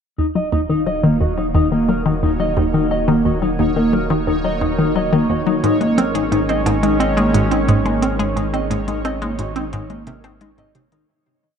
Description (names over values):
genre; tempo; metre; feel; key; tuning
ambient, sequencer-driven space music; 88 BPM; 4/4; straight; Eb minor; A4 = 438 Hz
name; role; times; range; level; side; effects
sweeping resonant pad; sustained chords; 0.2-11.1 s; Eb3 to F5; -25 LUFS; equal; chorus, shimmer reverb
mellow electric guitar; arpeggios; 0.2-11.0 s; Bb3 to Eb5; -20 LUFS; left 1 dB; auto-pan, low-pass filter, tape echo, shimmer reverb
hollow square pluck; riff; 0.2-11.0 s; Eb2 to C4; -19 LUFS; equal; chorus, phaser, tape echo, shimmer reverb
warm sub bass; bass; 0.2-11.1 s; Eb1 to Ab1; -27 LUFS; equal; none
bubbling stepped-filter texture; texture; 0.2-11.1 s; Db5; -31 LUFS; right 4 dB; chorus, built-in reverb, shimmer reverb
electronic hi-hat and percussion blips; percussion; 5.6-11.1 s; none; -34 LUFS; right 1 dB; tape echo
room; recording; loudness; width
wet huge ambient reverb, RT60 9.3 s; dark, warm production; -15 LUFS; side -7 dB against mid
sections
0.2-11.1 A section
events
fade-in on analog synth pad 0.2-11.1; fade-in on synth texture 0.2-11.1; filter sweep on clean electric guitar 0.2-11.1; fade-out 7.5-11.1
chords
0.2 Ebmadd9; 5.6 Absus4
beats
| 0.18 0.87 1.55 2.23 | 2.91 3.59 4.28 4.96 | 5.64 6.32 7.00 7.68 | 8.37 9.05 9.73 10.41